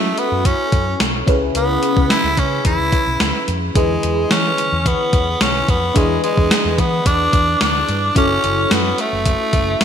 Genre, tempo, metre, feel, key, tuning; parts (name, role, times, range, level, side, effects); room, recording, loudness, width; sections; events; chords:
1980s-style pop; 109 BPM; 4/4; straight; E mixolydian; A4 = 440 Hz
raspy tenor saxophone; melody; 0.0-9.8 s; G#3 to E4; -18 LUFS; equal; ping-pong delay
FM electric piano with soft pad layer; accompaniment; 0.0-9.8 s; C#3 to B4; -22 LUFS; left 2 dB; chorus, phaser
mellow fretless electric bass; bass; 0.0-9.8 s; E1 to F#3; -23 LUFS; equal; analog chorus
gated 80s digital drum machine; drums; 0.2-9.8 s; hi-hat, kick drum, snare drum; -18 LUFS; equal; gated reverb, gated reverb snare
moderate plate reverb, RT60 2.8 s; bright 1980s-style digital production; -14 LUFS; side -8 dB against mid
0.0-9.8 A section
0.0 F#m7; 1.3 C#m7; 3.8 E7; 8.2 F#m7